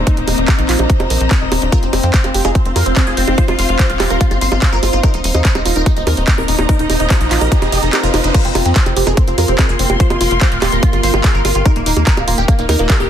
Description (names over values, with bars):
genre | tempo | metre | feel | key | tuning
psychedelic trance | 145 BPM | 4/4 | straight | unclear | A4 = 440 Hz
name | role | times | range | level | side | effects
evolving wavetable pad | sustained chords | 0.0-13.1 s | Bb3 to C5 | -23 LUFS | equal | phaser, built-in reverb, sidechain pumping
woody wave-folded pluck | riff | 0.0-12.9 s | D4 to F5 | -23 LUFS | moving between left 7 dB and right 9 dB | chorus, auto-pan, sidechain pumping, dub echo
tight sequencer bass | bass | 0.0-13.1 s | Eb1 to F2 | -17 LUFS | equal | none
warm studio string section | texture | 0.0-13.1 s | Bb3 to C6 | -23 LUFS | left 2 dB | sidechain pumping
big-room dance drum kit | drums | 0.1-13.1 s | bongos, crash cymbal, handclaps, hi-hat | -19 LUFS | right 2 dB | none
electronic kick drum | drums | 0.1-13.0 s | none | -13 LUFS | equal | none
supersaw stab | melody | 1.7-13.1 s | Bb3 to C5 | -21 LUFS | right 1 dB | phaser, sidechain pumping, dub echo
riser | sound effects | 6.0-8.3 s | none | -26 LUFS | equal | none
room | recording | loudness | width
digital ambience | dense, heavily limited modern master | -11 LUFS | side -10 dB against mid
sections
0.0-8.3 A section; 8.3-13.1 B section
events
riser 6.0-8.3; kick drops out 7.9-8.3; drop 8.3-13.1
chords
0.0 Eb5; 1.7 F5; 5.0 Eb5; 8.3 F5; 11.7 Eb5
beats
| 0.07 0.48 0.90 1.31 | 1.72 2.14 2.55 2.97 | 3.38 3.79 4.21 4.62 | 5.04 5.45 5.86 6.28 | 6.69 7.10 7.52 7.93 | 8.35 8.76 9.17 9.59 | 10.00 10.41 10.83 11.24 | 11.65 12.07 12.48 12.90